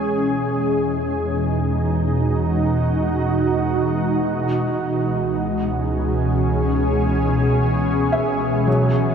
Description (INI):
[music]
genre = ambient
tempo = 54 BPM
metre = 4/4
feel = straight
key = unclear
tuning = A4 = 440 Hz
[part]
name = ethereal airy pad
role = sustained chords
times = 0.0-9.1 s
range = B2 to G#4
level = -18 LUFS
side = equal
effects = ensemble chorus, built-in reverb
[part]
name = deep rumbling drone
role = bass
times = 0.7-9.1 s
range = C#2 to E2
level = -28 LUFS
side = equal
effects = built-in reverb
[part]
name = felt-muted upright piano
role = arpeggios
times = 8.1-9.1 s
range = F#3 to E5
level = -24 LUFS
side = equal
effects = none
[sound]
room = wet huge ambient reverb, RT60 8.3 s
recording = dreamy mix soaked in reverb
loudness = -18 LUFS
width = side -7 dB against mid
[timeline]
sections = 0.0-9.1 A section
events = filter sweep on ambient pad 0.0-9.1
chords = 0.0 Emaj9; 4.3 C#m7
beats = 0.97 2.07 3.18 | 4.29 5.39 6.49 7.58 | 8.67